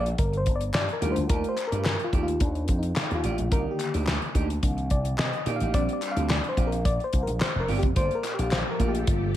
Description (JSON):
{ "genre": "early-eighties boogie funk", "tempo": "108 BPM", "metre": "4/4", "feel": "straight", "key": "G minor", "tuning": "A4 = 438 Hz", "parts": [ { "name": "FM electric piano with tremolo", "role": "accompaniment", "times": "0.0-9.4 s", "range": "D3 to F5", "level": "-30 LUFS", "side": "left 2 dB", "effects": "none" }, { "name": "clean electric guitar", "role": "riff", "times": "0.0-9.3 s", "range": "A3 to D5", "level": "-34 LUFS", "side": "right 7 dB", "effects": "wide subtle chorus" }, { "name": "slap bass with an envelope filter", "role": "bass", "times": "0.0-9.3 s", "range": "F1 to C3", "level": "-28 LUFS", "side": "equal", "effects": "none" }, { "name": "damped 70s drum kit", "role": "drums", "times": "0.1-9.2 s", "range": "handclaps, hi-hat, kick drum, snare drum", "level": "-27 LUFS", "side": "equal", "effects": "gated reverb" }, { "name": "group handclap", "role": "percussion", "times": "0.7-8.7 s", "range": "none", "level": "-37 LUFS", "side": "left 1 dB", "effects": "none" }, { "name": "string machine, full ensemble", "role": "sustained chords", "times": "8.0-9.4 s", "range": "Bb2 to A4", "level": "-34 LUFS", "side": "equal", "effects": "ensemble chorus" } ], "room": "light reverb, studio ambience", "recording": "none", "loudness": "-23 LUFS", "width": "side -12 dB against mid", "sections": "0.0-9.4 A section", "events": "FM electric piano solo 0.0-9.4", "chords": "0.0 Gm9; 1.0 Ebmaj9#11; 5.7 Bb69; 8.0 Gm9" }